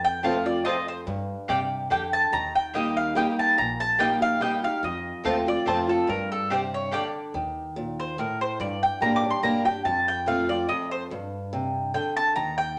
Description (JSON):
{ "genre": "bluegrass", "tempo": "144 BPM", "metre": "3/4", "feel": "swing 53% on 8ths", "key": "G minor", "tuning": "A4 = 440 Hz", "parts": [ { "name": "mandolin", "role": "melody", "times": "0.0-12.8 s", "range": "A4 to D6", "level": "-27 LUFS", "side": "equal", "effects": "none" }, { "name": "picked old ladder-braced acoustic guitar", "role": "accompaniment", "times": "0.0-12.8 s", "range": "F2 to G4", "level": "-30 LUFS", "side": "equal", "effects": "none" }, { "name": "upright bass", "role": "bass", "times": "0.0-12.8 s", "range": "Bb1 to A2", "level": "-40 LUFS", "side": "equal", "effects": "none" }, { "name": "mandolin", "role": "stabs", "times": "0.2-7.0 s", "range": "Bb3 to A5", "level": "-32 LUFS", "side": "equal", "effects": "none" } ], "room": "wet studio reverb, RT60 0.8 s", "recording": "none", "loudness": "-26 LUFS", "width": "mono", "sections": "0.0-7.3 A section; 7.3-12.8 A section", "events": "none", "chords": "0.0 F; 1.1 Gm; 2.3 Eb; 4.8 F; 6.1 Gm; 7.3 Eb5; 8.6 Gm; 9.9 F; 11.1 G5" }